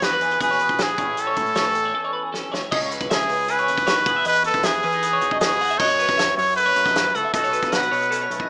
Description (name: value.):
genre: math rock and midwest emo.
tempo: 156 BPM.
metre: 4/4.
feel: straight.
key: A lydian.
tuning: A4 = 440 Hz.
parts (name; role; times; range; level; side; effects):
bright trumpet; melody; 0.0-8.5 s; G#4 to C#5; -22 LUFS; equal; none.
twangy electric guitar; accompaniment; 0.0-8.5 s; E2 to G#4; -35 LUFS; equal; lush chorus.
twelve-string electric guitar; arpeggios; 0.0-8.5 s; G#4 to F#5; -29 LUFS; equal; spring reverb, plate reverb.
growling fingered electric bass; bass; 0.0-8.5 s; A1 to E3; -38 LUFS; equal; overdrive.
loose indie drum kit; drums; 0.0-8.5 s; crash cymbal, hi-hat, kick drum, snare drum; -29 LUFS; equal; none.
room: moderate studio reverb, RT60 0.6 s.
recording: rough home demo mix, small speaker sound.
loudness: -21 LUFS.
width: mono.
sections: 0.0-2.7 A section; 2.7-8.5 B section.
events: break 2.0-2.7; drum fill 2.3-2.7.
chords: 0.0 Emaj7; 1.0 Aadd9; 2.7 C#m7; 4.1 Emaj7; 5.8 F#m7; 7.3 B9.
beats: 0.03 0.41 0.80 | 1.18 1.57 1.95 2.34 | 2.72 3.11 3.49 3.88 | 4.26 4.65 5.03 5.42 | 5.80 6.19 6.57 6.96 | 7.34 7.72 8.11 8.49.